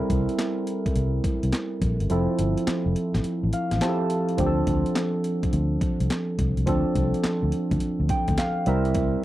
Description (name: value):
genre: R&B, new jack swing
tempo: 105 BPM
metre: 4/4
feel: swing 66% on 16ths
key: D minor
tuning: A4 = 440 Hz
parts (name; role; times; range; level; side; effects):
- barky tine electric piano; accompaniment; 0.0-9.2 s; F3 to A5; -25 LUFS; right 1 dB; analog chorus
- vintage muted fingered electric bass; bass; 0.1-9.1 s; F1 to D2; -25 LUFS; equal; none
- breakbeat sampler-style drum kit; drums; 0.1-9.1 s; handclaps, hi-hat, kick drum, snare drum; -28 LUFS; left 1 dB; none
room: little or no reverb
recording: dry, close 1970s-style studio recording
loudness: -22 LUFS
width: side -14 dB against mid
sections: 0.0-9.2 A section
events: kick muted 2.1-4.4; tine electric piano fill 3.2-4.4, 7.8-9.0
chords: 0.0 C7; 2.1 Fmaj7; 4.4 Dm7; 8.7 C7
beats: 0.38 0.96 1.53 | 2.10 2.67 3.24 3.81 | 4.38 4.96 5.53 6.10 | 6.67 7.24 7.81 8.38 | 8.96